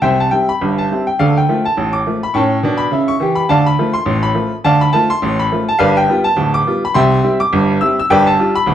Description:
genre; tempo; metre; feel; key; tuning
ragtime piano; 104 BPM; 2/4; swing 60% on 16ths; C major; A4 = 438 Hz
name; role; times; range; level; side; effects
clear upright piano; solo; 0.0-8.7 s; D1 to E6; -12 LUFS; equal; none
room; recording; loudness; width
wet club reverb, RT60 0.5 s; heard from further back in the room; -12 LUFS; side -10 dB against mid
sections
0.0-8.7 A section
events
none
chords
0.0 C; 1.2 Dm; 2.3 A7; 3.5 Dm; 5.8 G7; 6.9 C; 8.1 G7

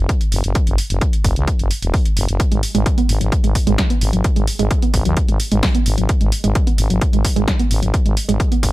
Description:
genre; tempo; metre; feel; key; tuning
driving peak-time techno; 130 BPM; 4/4; straight; unclear; A4 = 440 Hz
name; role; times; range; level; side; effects
growling FM bass; bass; 0.0-8.7 s; E1 to D#2; -19 LUFS; equal; sidechain pumping
electronic kick drum; drums; 0.1-8.7 s; none; -17 LUFS; equal; overdrive
punchy analog drum machine; drums; 0.1-8.7 s; hi-hat, snare drum; -25 LUFS; right 1 dB; none
warbly dusty pluck; riff; 2.5-8.6 s; F#3 to B3; -22 LUFS; right 4 dB; chorus, sidechain pumping
room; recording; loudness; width
digital ambience; none; -15 LUFS; side -17 dB against mid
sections
0.0-8.7 A section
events
none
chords
0.0 F#5; 2.4 N.C.

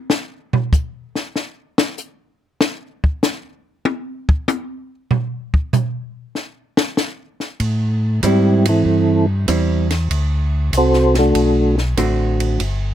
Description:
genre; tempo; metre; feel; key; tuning
soul jazz organ trio; 96 BPM; 4/4; swing 69% on 8ths; unclear; A4 = 437 Hz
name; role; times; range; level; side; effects
compact cocktail drum kit; drums; 0.1-12.8 s; hi-hat, kick drum, ride cymbal, snare drum, toms; -20 LUFS; equal; none
mellow tonewheel organ; bass; 7.6-12.9 s; G1 to A2; -18 LUFS; equal; overdrive, slow rotary speaker
vintage hollow-body jazz guitar; accompaniment; 8.2-12.6 s; D3 to F#4; -20 LUFS; right 4 dB; none
percussive tonewheel organ; melody; 8.3-11.8 s; E3 to C5; -14 LUFS; right 1 dB; slow rotary speaker, chorus vibrato
room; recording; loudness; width
little or no reverb; close, detailed microphones; -16 LUFS; side -11 dB against mid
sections
0.0-12.9 A section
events
tonewheel organ solo 0.0-12.9; drum solo 0.0-7.6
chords
0.0 N.C.; 7.6 Am7; 10.1 D7

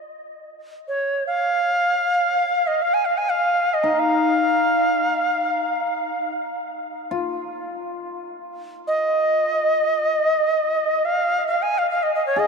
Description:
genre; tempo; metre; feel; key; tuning
world meditative, free-time meditation music; free time; none; none; unclear; A4 = 440 Hz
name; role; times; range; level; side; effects
cimbalom; texture; 0.0-12.5 s; Eb4 to Ab4; -27 LUFS; left 4 dB; none
bright reedy Native American-style cedar flute; melody; 0.9-12.5 s; Db5 to Ab5; -20 LUFS; right 1 dB; diffuse ambient delay
room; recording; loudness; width
wet huge ambient reverb, RT60 6.9 s; dark, warm production; -18 LUFS; side -4 dB against mid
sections
0.0-12.5 A section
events
none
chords
none

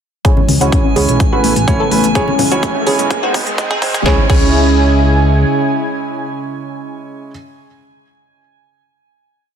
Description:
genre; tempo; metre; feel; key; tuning
progressive house; 126 BPM; 4/4; straight; C# minor; A4 = 441 Hz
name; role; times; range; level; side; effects
lush unison pad; sustained chords; 0.2-7.1 s; C#3 to G#5; -19 LUFS; equal; chorus, sidechain pumping
glassy wavetable pluck; arpeggios; 0.2-7.3 s; G#3 to A4; -19 LUFS; left 3 dB; chorus, vintage 12-bit sampler grit, sidechain pumping, tape echo
felt-muted upright piano; stabs; 0.2-7.3 s; G#3 to D#5; -18 LUFS; right 4 dB; sidechain pumping, low-pass filter, tape echo
big-room dance drum kit; drums; 0.2-4.4 s; crash cymbal, hi-hat, snare drum; -22 LUFS; left 2 dB; none
electronic kick drum; drums; 0.2-4.4 s; none; -14 LUFS; equal; none
riser; sound effects; 1.9-4.1 s; none; -27 LUFS; right 1 dB; none
drifting glass-harmonics texture; texture; 0.6-4.1 s; G#5; -25 LUFS; right 3 dB; chorus, built-in reverb, sidechain pumping
congas; percussion; 0.4-3.0 s; none; -24 LUFS; right 4 dB; sidechain pumping on perc
fat analog bass; bass; 0.5-5.4 s; G#1 to C#2; -16 LUFS; left 1 dB; sidechain pumping
room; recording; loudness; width
light reverb, digital ambience; dense, heavily limited modern master, high-pass filter; -11 LUFS; side -8 dB against mid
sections
0.2-4.1 build; 4.1-7.9 final chord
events
build-up 0.2-4.1; filter sweep on synth arpeggio sound 0.2-4.1; filter sweep on felt piano 0.2-4.1; filter sweep 0.2-4.1; riser 1.9-4.1; drum fill 2.2-4.1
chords
0.2 C#m; 1.2 Aadd9; 2.2 C#m; 3.1 G#; 4.1 C#m

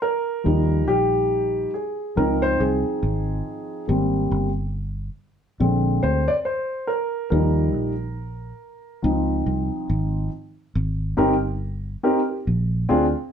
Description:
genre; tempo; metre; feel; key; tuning
lovers rock reggae; 70 BPM; 4/4; swing 59% on 16ths; Ab major; A4 = 440 Hz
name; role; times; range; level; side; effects
dark concert grand piano; accompaniment; 0.0-13.0 s; D3 to D5; -22 LUFS; equal; none
fingered electric bass; bass; 0.5-13.1 s; G1 to Eb2; -23 LUFS; equal; none
room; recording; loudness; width
moderate studio reverb, RT60 0.7 s; band playing live in one room; -20 LUFS; side -8 dB against mid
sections
0.0-10.7 A section; 10.7-13.3 B section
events
grand piano solo 0.0-10.7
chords
0.5 Ebadd9; 2.2 Dbmaj7; 3.9 Abmaj7; 5.6 Bb7; 7.3 Ebadd9; 9.0 Dbmaj7; 10.7 Abmaj7; 12.5 Bb7

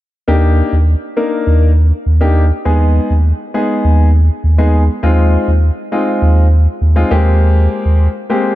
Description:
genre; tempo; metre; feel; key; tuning
pop; 101 BPM; 4/4; straight; Eb major; A4 = 440 Hz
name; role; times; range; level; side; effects
warm grand piano; accompaniment; 0.3-8.6 s; Ab3 to Bb4; -16 LUFS; left 2 dB; none
warm sub bass; bass; 0.3-8.1 s; Eb2; -10 LUFS; equal; none
room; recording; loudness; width
light reverb, small room ambience; dark, warm production; -10 LUFS; side -15 dB against mid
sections
0.3-8.6 A section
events
none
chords
0.3 Ebmaj7; 2.7 Abm/Eb; 5.0 Fm7/Eb; 7.1 Abmaj9/Eb

